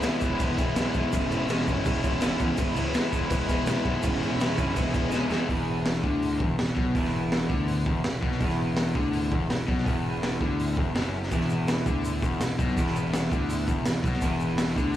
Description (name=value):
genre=indie rock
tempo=165 BPM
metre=4/4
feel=straight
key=E major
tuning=A4 = 440 Hz
part: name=analog string pad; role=sustained chords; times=0.0-5.5 s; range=G#4 to E6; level=-40 LUFS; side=left 2 dB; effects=none
part: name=electric guitar through a small old amp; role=riff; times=0.0-15.0 s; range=B3 to G#4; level=-33 LUFS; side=right 6 dB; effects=analog chorus, analog delay, slapback echo
part: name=raw garage guitar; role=riff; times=0.0-15.0 s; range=E2 to E4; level=-29 LUFS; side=left 4 dB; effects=overdrive
part: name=raw garage drum kit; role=drums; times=0.0-15.0 s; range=crash cymbal, hi-hat, kick drum, snare drum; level=-28 LUFS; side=equal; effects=none
part: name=tube shaker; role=percussion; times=0.0-5.4, 11.3-15.0 s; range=none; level=-47 LUFS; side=right 2 dB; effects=none
part: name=fuzz picked electric bass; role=bass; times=0.3-15.0 s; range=E1 to E2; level=-31 LUFS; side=equal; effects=overdrive
room=light reverb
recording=live gig heard through the venue's PA, club reverb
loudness=-24 LUFS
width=side -12 dB against mid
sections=0.0-5.5 A section; 5.5-15.0 B section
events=drum fill 5.1-5.5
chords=0.0 E; 1.1 C#m7/E; 2.6 E; 4.0 C#m7/E; 4.8 Emaj7; 5.5 E